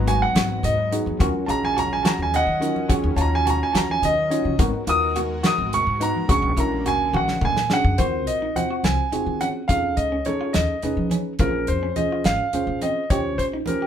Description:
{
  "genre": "electric jazz fusion",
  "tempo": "71 BPM (dotted quarters)",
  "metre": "6/8",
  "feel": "straight",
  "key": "Eb minor, Eb dorian from 8.0 s",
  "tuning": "A4 = 441 Hz",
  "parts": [
    { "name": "clear grand piano", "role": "melody", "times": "0.0-13.9 s", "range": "Bb4 to Eb6", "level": "-23 LUFS", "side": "right 1 dB", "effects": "none" },
    { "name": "tine electric piano", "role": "accompaniment", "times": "0.0-13.9 s", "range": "Cb4 to Db5", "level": "-27 LUFS", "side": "equal", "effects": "overdrive" },
    { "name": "lush unison pad", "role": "sustained chords", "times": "0.0-8.0 s", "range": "D3 to Bb5", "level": "-34 LUFS", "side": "left 3 dB", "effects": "chorus, phaser" },
    { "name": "upright bass", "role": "bass", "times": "0.0-13.6 s", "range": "Ab1 to F3", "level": "-26 LUFS", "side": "left 1 dB", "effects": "none" },
    { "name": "clean electric guitar", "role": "stabs", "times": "0.1-13.9 s", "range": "C4 to G4", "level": "-30 LUFS", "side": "right 1 dB", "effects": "none" },
    { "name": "damped 70s drum kit", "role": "drums", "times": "0.1-13.8 s", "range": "hi-hat, kick drum, snare drum, toms", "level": "-24 LUFS", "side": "equal", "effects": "none" },
    { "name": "congas", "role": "percussion", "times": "0.1-13.9 s", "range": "none", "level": "-32 LUFS", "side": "right 1 dB", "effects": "none" }
  ],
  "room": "moderate studio reverb, RT60 0.6 s",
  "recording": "band playing live in one room",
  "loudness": "-19 LUFS",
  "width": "side -9 dB against mid",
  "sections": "0.0-8.0 A section; 8.0-13.9 B section",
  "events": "grand piano solo 0.0-8.0; drum fill 7.1-8.0",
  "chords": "0.0 Abm9; 1.2 Ebm9; 4.6 Abm9; 6.3 Bb7alt; 8.0 Ebm69; 9.7 F7alt; 11.4 Bbm9; 13.1 Eb13"
}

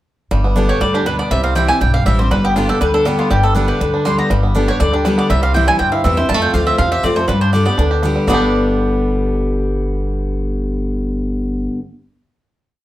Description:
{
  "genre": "bluegrass",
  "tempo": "241 BPM",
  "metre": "4/4",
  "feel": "straight",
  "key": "G mixolydian",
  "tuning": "A4 = 440 Hz",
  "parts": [
    { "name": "picked steel-string acoustic guitar", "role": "accompaniment", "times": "0.3-11.8 s", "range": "F2 to G4", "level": "-18 LUFS", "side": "left 2 dB", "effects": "none" },
    { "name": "bluegrass banjo", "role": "arpeggios", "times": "0.3-11.7 s", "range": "E3 to G4", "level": "-20 LUFS", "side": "right 1 dB", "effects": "none" },
    { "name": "upright bass", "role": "bass", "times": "0.3-11.7 s", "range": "G1 to G2", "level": "-18 LUFS", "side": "equal", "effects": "none" },
    { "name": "mandolin", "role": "melody", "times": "0.7-11.7 s", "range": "F4 to C6", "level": "-19 LUFS", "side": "right 1 dB", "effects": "none" }
  ],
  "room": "wet small room reverb, RT60 0.5 s",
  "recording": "heard from further back in the room",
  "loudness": "-13 LUFS",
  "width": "side -14 dB against mid",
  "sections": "0.3-8.3 A section; 8.3-10.3 final chord",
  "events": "none",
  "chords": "0.3 G; 1.3 C; 2.3 G; 5.3 C; 6.3 F; 7.3 G"
}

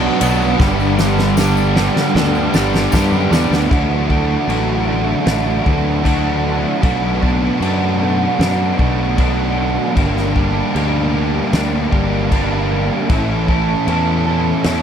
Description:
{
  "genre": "rock, shoegaze and dream pop",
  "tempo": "77 BPM",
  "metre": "4/4",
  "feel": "straight",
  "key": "D major",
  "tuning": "A4 = 442 Hz",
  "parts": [
    { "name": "twelve-string electric guitar", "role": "arpeggios", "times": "0.0-14.8 s", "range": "E3 to A4", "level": "-26 LUFS", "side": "right 10 dB", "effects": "ensemble chorus, tape echo" },
    { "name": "biting overdriven guitar", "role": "riff", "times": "0.0-14.8 s", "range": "G2 to A4", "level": "-20 LUFS", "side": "right 10 dB", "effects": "reverse reverb" },
    { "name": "distorted electric guitar", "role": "riff", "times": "0.0-3.7 s", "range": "G2 to B3", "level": "-21 LUFS", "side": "equal", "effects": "overdrive" },
    { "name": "overdriven electric guitar", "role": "riff", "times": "0.0-14.8 s", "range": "G2 to E4", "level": "-20 LUFS", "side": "left 11 dB", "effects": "analog chorus" },
    { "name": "growling fingered electric bass", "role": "bass", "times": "0.0-14.8 s", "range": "G1 to G2", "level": "-19 LUFS", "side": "equal", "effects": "overdrive" },
    { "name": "loose indie drum kit", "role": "drums", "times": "0.2-14.8 s", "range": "crash cymbal, kick drum, ride cymbal, snare drum", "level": "-20 LUFS", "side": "equal", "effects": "none" },
    { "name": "tambourine", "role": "percussion", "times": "0.2-3.6 s", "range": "none", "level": "-36 LUFS", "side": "left 10 dB", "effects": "none" }
  ],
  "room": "moderate booth ambience, RT60 0.2 s",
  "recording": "none",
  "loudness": "-14 LUFS",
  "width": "side -8 dB against mid",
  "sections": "0.0-3.7 A section; 3.7-14.8 B section",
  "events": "drum fill 0.6-3.7",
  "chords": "0.0 Bm; 0.6 Gadd9; 3.7 Dadd9; 6.8 Bm7; 10.0 Gm; 13.1 A"
}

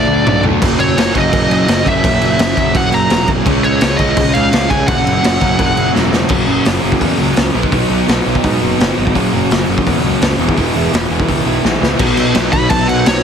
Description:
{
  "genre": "punk rock",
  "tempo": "169 BPM",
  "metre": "4/4",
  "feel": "straight",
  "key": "F# mixolydian",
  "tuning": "A4 = 439 Hz",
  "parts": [
    { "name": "high-gain lead guitar", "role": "melody", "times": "0.0-5.9, 12.5-13.2 s", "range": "C#5 to B5", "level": "-16 LUFS", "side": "equal", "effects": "distortion, digital delay" },
    { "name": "crunchy overdriven guitar", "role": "riff", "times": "0.0-13.2 s", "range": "E2 to D4", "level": "-19 LUFS", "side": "left 13 dB", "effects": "none" },
    { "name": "fuzz guitar", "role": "riff", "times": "0.0-13.2 s", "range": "E2 to D4", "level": "-21 LUFS", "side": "equal", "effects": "distortion" },
    { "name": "raw garage guitar", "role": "riff", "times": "0.0-13.2 s", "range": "F#2 to E4", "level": "-19 LUFS", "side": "right 15 dB", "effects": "overdrive" },
    { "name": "fuzz picked electric bass", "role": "bass", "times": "0.0-13.2 s", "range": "E1 to G#2", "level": "-19 LUFS", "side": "equal", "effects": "overdrive" },
    { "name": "raw garage drum kit", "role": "drums", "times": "0.3-13.2 s", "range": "crash cymbal, hi-hat, kick drum, snare drum, splash cymbal, toms", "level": "-16 LUFS", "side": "equal", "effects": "none" }
  ],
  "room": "light reverb",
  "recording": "heavily compressed radio sound",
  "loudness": "-11 LUFS",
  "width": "side -7 dB against mid",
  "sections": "0.0-6.3 A section; 6.3-12.0 B section; 12.0-13.2 C section",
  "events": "drum fill 0.0-0.6, 5.9-6.3, 11.6-12.0; lead electric guitar solo 12.0-13.2",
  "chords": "0.0 D; 0.6 F#; 3.5 C#; 4.9 F#; 7.5 B; 9.1 F#; 10.4 E; 12.0 B"
}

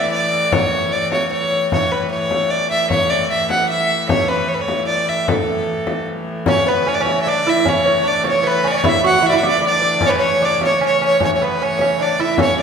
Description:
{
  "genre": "medieval dance",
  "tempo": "152 BPM",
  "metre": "3/4",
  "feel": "straight",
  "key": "A major",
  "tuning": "A4 = 442 Hz",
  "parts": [
    { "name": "rich fiddle", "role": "melody", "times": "0.0-12.6 s", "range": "A4 to F#5", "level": "-17 LUFS", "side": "equal", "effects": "none" },
    { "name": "clear hurdy-gurdy", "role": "drone", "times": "0.0-12.6 s", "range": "A2 to E3", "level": "-25 LUFS", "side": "equal", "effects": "none" },
    { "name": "frame drum", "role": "percussion", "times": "0.3-12.6 s", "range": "none", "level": "-23 LUFS", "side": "left 3 dB", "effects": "none" },
    { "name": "lute", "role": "second line", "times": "6.5-12.6 s", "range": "B3 to F#4", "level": "-19 LUFS", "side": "right 4 dB", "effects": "none" }
  ],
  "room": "wet recital hall reverb, RT60 1.5 s",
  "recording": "recorded in a church or concert hall",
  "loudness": "-14 LUFS",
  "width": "side -6 dB against mid",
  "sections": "0.0-6.5 A section; 6.5-12.6 A section",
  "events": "none",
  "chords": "none"
}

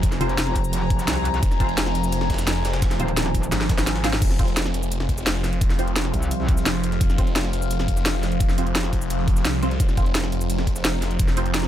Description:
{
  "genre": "dark technical drum and bass",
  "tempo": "172 BPM",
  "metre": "4/4",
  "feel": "straight",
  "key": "F minor",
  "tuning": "A4 = 439 Hz",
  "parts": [
    { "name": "deep dark ambient pad", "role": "sustained chords", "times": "0.0-11.7 s", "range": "F3 to Bb5", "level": "-28 LUFS", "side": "right 2 dB", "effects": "chorus, built-in reverb, sidechain pumping" },
    { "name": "snarling distorted saw bass", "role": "bass", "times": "0.0-11.7 s", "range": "F1 to C2", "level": "-24 LUFS", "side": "equal", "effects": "distortion, overdrive, sidechain pumping" },
    { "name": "drum and bass drum kit", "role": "drums", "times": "0.0-11.7 s", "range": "crash cymbal, hi-hat, shaker, snare drum", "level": "-26 LUFS", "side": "equal", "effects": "overdrive" },
    { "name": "electronic kick drum", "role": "drums", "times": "0.0-11.3 s", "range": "none", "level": "-22 LUFS", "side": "equal", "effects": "overdrive" },
    { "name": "jungle sampler-style drum kit", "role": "drums", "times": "0.0-11.6 s", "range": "hi-hat, snare drum", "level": "-35 LUFS", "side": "equal", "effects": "none" },
    { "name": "airy breathy pad", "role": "texture", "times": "0.0-4.2 s", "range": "F4 to Bb5", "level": "-31 LUFS", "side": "left 8 dB", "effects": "chorus, sidechain pumping" },
    { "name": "filtered dub chord stab", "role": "stabs", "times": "0.2-11.5 s", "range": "C4 to C5", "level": "-32 LUFS", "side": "right 2 dB", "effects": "phaser, ensemble chorus, vintage 12-bit sampler grit, dub echo" },
    { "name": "metallic wobble bass", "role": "bass", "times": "0.2-3.5, 6.1-6.6 s", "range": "Eb1 to C2", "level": "-24 LUFS", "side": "equal", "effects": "distortion, chorus" }
  ],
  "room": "digital ambience",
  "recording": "none",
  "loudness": "-19 LUFS",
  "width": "side -11 dB against mid",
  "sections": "0.0-4.2 A section; 4.2-11.7 A section",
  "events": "drop 0.0-4.2, 4.2-11.7; drum fill 3.5-4.2",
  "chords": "0.0 F5"
}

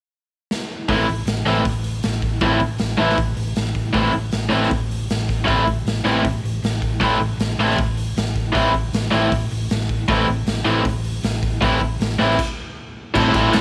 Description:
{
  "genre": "garage rock duo or trio",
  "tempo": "156 BPM",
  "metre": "4/4",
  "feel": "straight",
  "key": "A minor",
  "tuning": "A4 = 440 Hz",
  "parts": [
    { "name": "raw garage drum kit", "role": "drums", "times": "0.5-13.6 s", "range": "crash cymbal, hi-hat, kick drum, ride cymbal, snare drum", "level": "-27 LUFS", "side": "equal", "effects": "none" },
    { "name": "raw garage guitar", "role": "riff", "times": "0.9-13.6 s", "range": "A2 to A4", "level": "-21 LUFS", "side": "equal", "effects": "overdrive" },
    { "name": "hollow-body short-scale fingered electric bass", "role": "bass", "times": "0.9-13.6 s", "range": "A1", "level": "-26 LUFS", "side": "equal", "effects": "overdrive" }
  ],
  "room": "studio reverb",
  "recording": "none",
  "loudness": "-20 LUFS",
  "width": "mono",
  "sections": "0.9-13.1 A section",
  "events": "drum fill 0.5-0.9; stop 12.4-13.1",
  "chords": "0.0 N.C.; 0.9 Am"
}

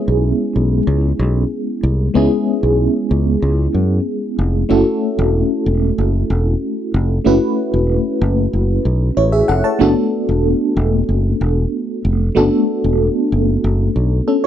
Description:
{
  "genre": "1980s-style pop",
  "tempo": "94 BPM",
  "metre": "4/4",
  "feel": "straight",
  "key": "F# minor",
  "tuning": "A4 = 441 Hz",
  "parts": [
    { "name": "FM electric piano with tremolo", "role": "accompaniment", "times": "0.0-14.5 s", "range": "G#3 to A5", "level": "-16 LUFS", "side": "equal", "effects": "phaser" },
    { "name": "fingered electric bass", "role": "bass", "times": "0.1-14.2 s", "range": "E1 to F#2", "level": "-16 LUFS", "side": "equal", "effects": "none" }
  ],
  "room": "light reverb",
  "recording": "dry, close 1970s-style studio recording",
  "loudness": "-14 LUFS",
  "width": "side -10 dB against mid",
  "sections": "0.0-14.5 A section",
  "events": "none",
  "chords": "0.0 C#m7; 4.7 F#m7; 9.8 D6"
}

